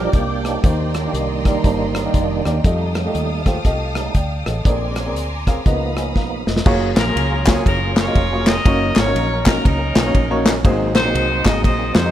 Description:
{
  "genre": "uptempo gospel",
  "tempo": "120 BPM",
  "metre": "4/4",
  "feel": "swing 63% on 8ths",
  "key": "F# major from 6.7 s",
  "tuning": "A4 = 439 Hz",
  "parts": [
    { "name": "warm upright piano", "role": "accompaniment", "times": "0.0-12.1 s", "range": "G#2 to Bb5", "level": "-23 LUFS", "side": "left 1 dB", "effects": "none" },
    { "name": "clear symphonic string section", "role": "sustained chords", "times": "0.0-6.6 s", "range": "D5 to Eb6", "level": "-31 LUFS", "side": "equal", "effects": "none" },
    { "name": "tonewheel organ", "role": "sustained chords", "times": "0.0-12.1 s", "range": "Eb3 to Bb4", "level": "-25 LUFS", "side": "right 4 dB", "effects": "slow rotary speaker, chorus vibrato" },
    { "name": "fingered electric bass", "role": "bass", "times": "0.0-12.1 s", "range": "F1 to F2", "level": "-23 LUFS", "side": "equal", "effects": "none" },
    { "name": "modern studio drum kit", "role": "drums", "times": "0.1-12.0 s", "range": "crash cymbal, hi-hat, kick drum, ride cymbal, rim click, snare drum", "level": "-18 LUFS", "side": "equal", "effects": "none" },
    { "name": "clear horn section", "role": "melody", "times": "7.0-12.1 s", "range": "C#4 to D#5", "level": "-21 LUFS", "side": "left 1 dB", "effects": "none" },
    { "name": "group handclap", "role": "percussion", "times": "7.0-12.0 s", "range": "none", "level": "-27 LUFS", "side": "left 2 dB", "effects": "none" }
  ],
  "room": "light reverb",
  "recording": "none",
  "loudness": "-15 LUFS",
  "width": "side -12 dB against mid",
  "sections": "0.0-6.7 A section; 6.7-12.1 B section",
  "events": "tonewheel organ solo 0.0-6.7; drum fill 6.2-6.7",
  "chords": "0.0 Ebmaj9; 0.6 Cm7; 2.6 F9; 4.7 Bb9; 5.7 Db13; 6.7 F#maj9; 8.7 D#m7/F#; 10.6 G#9"
}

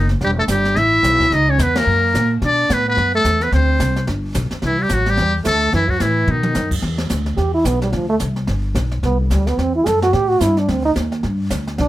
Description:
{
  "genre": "jazz, small-group swing and bop",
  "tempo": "217 BPM",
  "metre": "4/4",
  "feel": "swing 59% on 8ths",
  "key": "E minor",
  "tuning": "A4 = 439 Hz",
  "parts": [
    { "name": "trumpet with metal mute", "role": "melody", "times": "0.0-6.7 s", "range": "D#4 to E5", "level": "-18 LUFS", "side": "left 2 dB", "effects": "none" },
    { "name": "mellow trombone", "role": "second line", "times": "0.0-11.9 s", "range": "D3 to A4", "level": "-19 LUFS", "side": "right 2 dB", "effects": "none" },
    { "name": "upright bass", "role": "bass", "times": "0.0-11.9 s", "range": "E1 to B2", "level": "-19 LUFS", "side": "equal", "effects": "none" },
    { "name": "jazz brush drum kit", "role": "drums", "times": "0.1-11.9 s", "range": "brushed snare drum, crash cymbal, hi-hat, kick drum, ride cymbal, snare drum, toms", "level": "-26 LUFS", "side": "equal", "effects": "none" }
  ],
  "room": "light reverb",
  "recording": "none",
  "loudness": "-15 LUFS",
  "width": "side -15 dB against mid",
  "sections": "0.0-6.8 A section; 6.8-11.9 B section",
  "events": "band accent 1.7; drum fill 6.3; trombone solo 6.8-11.9",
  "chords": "0.2 Em; 1.3 C#m13; 1.9 F#; 2.4 Bm7; 3.5 Csus2; 4.1 G; 4.6 C69; 5.7 F#m7; 6.3 B; 6.8 E5; 7.9 F5; 8.5 G; 9.0 Cadd9; 10.1 Emadd9; 10.7 Cmadd9/D; 11.2 G"
}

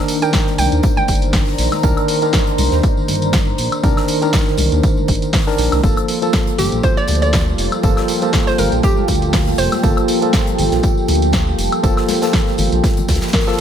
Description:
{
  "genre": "deep house",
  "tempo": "120 BPM",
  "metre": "4/4",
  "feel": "swing 55% on 16ths",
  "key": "C minor",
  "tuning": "A4 = 440 Hz",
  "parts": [
    { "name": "dark analog pad", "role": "sustained chords", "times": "0.0-13.6 s", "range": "Eb3 to C5", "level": "-27 LUFS", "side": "equal", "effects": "chorus, sidechain pumping" },
    { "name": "tine electric piano", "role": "stabs", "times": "0.0-13.6 s", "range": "Eb3 to Bb4", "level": "-20 LUFS", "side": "equal", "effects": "fast stereo tremolo, sidechain pumping, dub echo" },
    { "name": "deep dark ambient pad", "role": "texture", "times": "0.2-13.6 s", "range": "Eb3 to Bb5", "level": "-23 LUFS", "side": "right 1 dB", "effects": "chorus, built-in reverb, sidechain pumping" },
    { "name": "modern studio drum kit", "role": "drums", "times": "0.1-13.6 s", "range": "hi-hat, snare drum, tambourine", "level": "-31 LUFS", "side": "left 1 dB", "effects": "high-pass filter on hats, high-pass filter on snare, high-pass filter on perc, high-pass filter on room" },
    { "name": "punchy analog drum machine", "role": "drums", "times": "0.1-13.4 s", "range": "hi-hat, snare drum, woodblock", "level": "-23 LUFS", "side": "equal", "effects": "none" },
    { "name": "tambourine", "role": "percussion", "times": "0.1-13.6 s", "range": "none", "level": "-32 LUFS", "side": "left 2 dB", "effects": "none" },
    { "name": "hollow square pluck", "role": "melody", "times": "0.2-1.7, 6.6-10.3 s", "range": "G4 to G5", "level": "-22 LUFS", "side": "right 2 dB", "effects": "chorus, tape echo" },
    { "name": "congas", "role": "percussion", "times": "0.2-13.2 s", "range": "none", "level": "-29 LUFS", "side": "left 4 dB", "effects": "none" },
    { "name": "electronic kick drum", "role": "drums", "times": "0.3-13.4 s", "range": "none", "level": "-17 LUFS", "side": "equal", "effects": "none" },
    { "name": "smooth synth bass", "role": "bass", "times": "0.6-13.2 s", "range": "F1 to Eb2", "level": "-19 LUFS", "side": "equal", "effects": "sidechain pumping" },
    { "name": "marimba with medium hard mallets", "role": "melody", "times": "13.3-13.6 s", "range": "Bb4", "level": "-22 LUFS", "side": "left 5 dB", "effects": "none" }
  ],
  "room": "light reverb, small room ambience",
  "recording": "none",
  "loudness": "-13 LUFS",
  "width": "side -9 dB against mid",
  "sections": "0.0-13.6 A section",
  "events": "band accent 13.3",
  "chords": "0.0 Cm9; 5.8 Gm9"
}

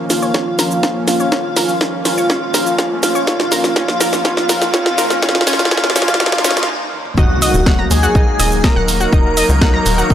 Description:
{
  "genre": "melodic techno",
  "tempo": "123 BPM",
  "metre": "4/4",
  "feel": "straight",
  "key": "Eb minor",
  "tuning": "A4 = 439 Hz",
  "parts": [
    { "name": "evolving wavetable pad", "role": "sustained chords", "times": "0.0-10.1 s", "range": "Eb2 to Eb4", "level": "-27 LUFS", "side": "left 1 dB", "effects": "phaser, built-in reverb, sidechain pumping" },
    { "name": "brassy analog pad", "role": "stabs", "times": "0.0-10.1 s", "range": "F3 to Eb4", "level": "-24 LUFS", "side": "equal", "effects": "chorus, sidechain pumping, tape echo" },
    { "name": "analog drone", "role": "drone", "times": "0.0-6.7 s", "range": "Eb3 to Bb3", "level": "-33 LUFS", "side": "left 2 dB", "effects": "none" },
    { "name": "riser and impact", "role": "sound effects", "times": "1.4-9.1 s", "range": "none", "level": "-26 LUFS", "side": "equal", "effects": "none" },
    { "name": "wide unison lead", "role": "melody", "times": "0.1-10.1 s", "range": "F4 to Bb4", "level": "-19 LUFS", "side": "equal", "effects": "sidechain pumping, analog delay" },
    { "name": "airy dreamy lead", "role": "second line", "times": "0.1-10.1 s", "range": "F5 to Bb5", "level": "-22 LUFS", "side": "left 1 dB", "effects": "chorus, vintage 12-bit sampler grit, sidechain pumping, tape echo" },
    { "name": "house drum kit", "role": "drums", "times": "0.1-10.1 s", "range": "hi-hat, shaker, snare drum, toms", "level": "-17 LUFS", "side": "equal", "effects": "none" },
    { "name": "analog pluck", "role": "arpeggios", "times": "0.2-10.1 s", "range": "Db4 to Bb6", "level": "-23 LUFS", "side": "left 1 dB", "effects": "chorus, sidechain pumping, tape echo" },
    { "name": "electronic kick drum", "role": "drums", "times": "0.3-10.1 s", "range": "none", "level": "-15 LUFS", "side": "equal", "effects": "high-pass filter on kick, high-pass filter on room" },
    { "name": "tight sequencer bass", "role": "bass", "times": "7.2-10.1 s", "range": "Eb1 to Eb2", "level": "-17 LUFS", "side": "equal", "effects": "sidechain pumping" }
  ],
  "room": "moderate lush hall reverb, RT60 2.2 s",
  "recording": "dry, gritty hardware recording, transformer saturation, high-pass filter",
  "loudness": "-12 LUFS",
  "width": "side -10 dB against mid",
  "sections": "0.0-7.2 A section; 7.2-10.1 B section",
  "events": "build-up 0.0-7.2; drum fill 0.0-6.7, 6.9; filter sweep on synth pluck 0.0-7.2; filter sweep on analog synth lead 0.0-7.2; filter sweep on digital synth lead 0.0-7.2; filter sweep on ambient pad 0.0-7.2; break 6.7-7.2; drop 7.2-10.1; impact 7.2-9.1",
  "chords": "0.0 Bbm/Eb; 7.2 Ebm"
}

